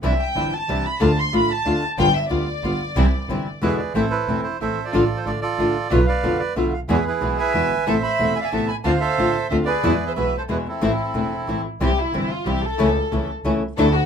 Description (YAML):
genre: tango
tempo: 183 BPM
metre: 3/4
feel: rubato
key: C major, A harmonic minor from 3.9 s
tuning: A4 = 441 Hz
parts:
  - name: warm studio violin section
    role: second line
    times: 0.0-3.6, 7.4-14.1 s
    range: E4 to C6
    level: -25 LUFS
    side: left 2 dB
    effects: none
  - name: flamenco guitar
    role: accompaniment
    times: 0.0-13.9 s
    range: B2 to F4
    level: -23 LUFS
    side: left 2 dB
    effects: none
  - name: rich studio string section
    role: stabs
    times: 0.0-13.9 s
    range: F#3 to A4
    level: -30 LUFS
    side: left 1 dB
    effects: none
  - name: rich double bass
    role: bass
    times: 0.0-13.9 s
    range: E1 to E2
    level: -24 LUFS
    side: right 1 dB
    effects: none
  - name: bandoneon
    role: melody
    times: 3.6-11.6 s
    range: C4 to B5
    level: -23 LUFS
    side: right 5 dB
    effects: none
room: moderate club reverb, RT60 0.5 s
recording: minimal, uncompressed stereo recording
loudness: -19 LUFS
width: side -7 dB against mid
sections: 0.0-3.9 A section; 3.9-11.8 B section; 11.8-14.1 A section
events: violin section solo 0.0-3.9, 11.8-14.1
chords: 0.0 Cadd9; 1.0 Dm; 2.0 G7; 3.0 C; 3.6 E7; 3.9 Am; 4.9 Dm/A; 5.9 Bdim; 6.9 E; 7.9 Amadd9; 8.9 Dm7; 9.8 E; 10.8 Am; 11.8 C; 12.8 A/C#